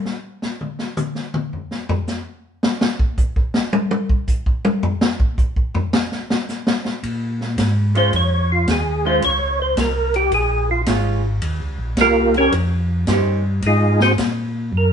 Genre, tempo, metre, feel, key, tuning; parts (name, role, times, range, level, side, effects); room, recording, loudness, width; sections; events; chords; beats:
soul jazz organ trio; 109 BPM; 4/4; swing 67% on 8ths; A4 = 437 Hz
vintage drum kit; drums; 0.1-14.4 s; hi-hat, kick drum, ride cymbal, snare drum, toms; -21 LUFS; equal
mellow tonewheel organ; bass; 7.0-14.9 s; Ab1 to Bb2; -20 LUFS; equal; slow rotary speaker
vintage hollow-body jazz guitar; accompaniment; 7.9-13.4 s; Eb3 to C5; -23 LUFS; right 4 dB
percussive tonewheel organ; melody; 8.0-14.9 s; Ab3 to Db5; -17 LUFS; right 1 dB; slow rotary speaker, chorus vibrato
moderate studio reverb, RT60 0.8 s; band playing live in one room, nothing above 10.8 kHz; -17 LUFS; side -8 dB against mid
0.0-14.9 A section
tonewheel organ solo 0.0-14.9; drum solo 0.0-7.0
0.0 N.C.; 7.0 Bbm7; 11.4 Eb13; 13.6 Ab13
| 0.42 0.97 1.53 2.08 | 2.63 3.18 3.73 4.28 | 4.83 5.38 5.93 6.48 | 7.03 7.58 8.13 8.68 | 9.23 9.78 10.33 10.88 | 11.43 11.98 12.53 13.08 | 13.63 14.18 14.73